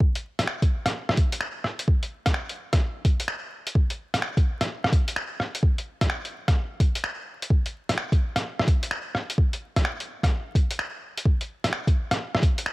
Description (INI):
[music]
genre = future garage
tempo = 128 BPM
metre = 4/4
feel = swing 64% on 16ths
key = none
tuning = none
[part]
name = electronic kick drum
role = drums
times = 0.0-12.5 s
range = none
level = -21 LUFS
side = equal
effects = none
[part]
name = lo-fi sampler-style drum kit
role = drums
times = 0.2-12.7 s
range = finger snaps, hi-hat, rim click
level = -27 LUFS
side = equal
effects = none
[sound]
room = little or no reverb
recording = dry, gritty hardware recording, vinyl crackle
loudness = -23 LUFS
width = side -20 dB against mid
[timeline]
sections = 0.0-12.7 A section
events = none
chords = none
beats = | 0.00 0.47 0.94 1.41 | 1.88 2.35 2.82 3.29 | 3.75 4.22 4.69 5.16 | 5.63 6.10 6.57 7.04 | 7.50 7.97 8.44 8.91 | 9.38 9.85 10.32 10.79 | 11.25 11.72 12.19 12.66